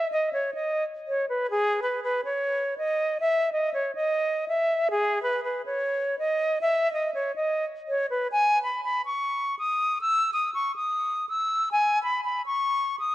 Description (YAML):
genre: hip hop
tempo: 141 BPM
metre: 4/4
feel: half-time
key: unclear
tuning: A4 = 440 Hz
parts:
  - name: silver concert flute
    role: solo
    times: 0.0-13.1 s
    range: G#4 to E6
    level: -24 LUFS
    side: equal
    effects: digital delay
room: moderate concert hall reverb, RT60 1.8 s, studio reverb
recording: worn, warbling old tape, cassette tape, warbly pitch drift, nothing above 10.3 kHz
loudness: -24 LUFS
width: side -15 dB against mid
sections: 0.0-8.3 A section; 8.3-13.1 B section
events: none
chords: none